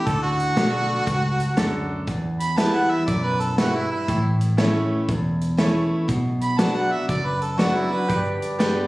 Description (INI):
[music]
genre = honky-tonk and classic country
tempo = 120 BPM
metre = 4/4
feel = swing 65% on 8ths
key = D major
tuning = A4 = 439 Hz
[part]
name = clear harmonica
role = second line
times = 0.0-8.2 s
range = E4 to B5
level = -24 LUFS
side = right 1 dB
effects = none
[part]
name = picked steel-string acoustic guitar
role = accompaniment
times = 0.0-8.9 s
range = E2 to G4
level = -24 LUFS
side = left 1 dB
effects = none
[part]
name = vintage muted fingered electric bass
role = bass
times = 0.1-8.9 s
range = E1 to E2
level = -27 LUFS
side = equal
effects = none
[part]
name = natural country drum kit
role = drums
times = 0.1-8.8 s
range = hi-hat, kick drum, snare drum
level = -25 LUFS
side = equal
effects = none
[part]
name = bright grand piano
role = accompaniment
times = 0.6-8.9 s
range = D4 to D5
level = -29 LUFS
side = right 2 dB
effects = none
[part]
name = pedal steel guitar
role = sustained chords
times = 8.1-8.9 s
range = G4 to D5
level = -27 LUFS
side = equal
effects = none
[sound]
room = moderate recital hall reverb, RT60 1.5 s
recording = recorded on a phone in the room, studio reverb, compression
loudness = -19 LUFS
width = side -19 dB against mid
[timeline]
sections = 0.0-8.9 A section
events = harmonica solo 0.0-8.9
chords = 0.1 D; 2.1 Em; 4.1 A; 6.1 Bm; 8.1 G